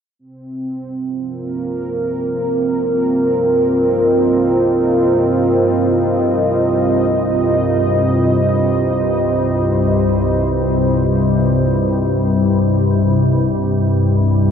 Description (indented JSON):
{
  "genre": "dark ambient drone",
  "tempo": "free time",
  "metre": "none",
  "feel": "none",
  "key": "C minor",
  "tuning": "A4 = 438 Hz",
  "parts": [
    { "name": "dark analog pad", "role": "sustained chords", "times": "0.2-14.5 s", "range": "C4 to Eb5", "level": "-16 LUFS", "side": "right 1 dB", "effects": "chorus" },
    { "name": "organ-like drone", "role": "drone", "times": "1.2-14.5 s", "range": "C2 to G2", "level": "-17 LUFS", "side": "left 1 dB", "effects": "ensemble chorus, built-in reverb" }
  ],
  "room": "wet huge ambient reverb, RT60 8.0 s",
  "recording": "worn, warbling old tape, cassette tape, warbly pitch drift",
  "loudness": "-14 LUFS",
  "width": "side -7 dB against mid",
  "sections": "0.2-14.5 A section",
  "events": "fade-in on synth drone 0.2-14.5; fade-out on analog synth pad 0.2-14.5",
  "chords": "0.2 Cm"
}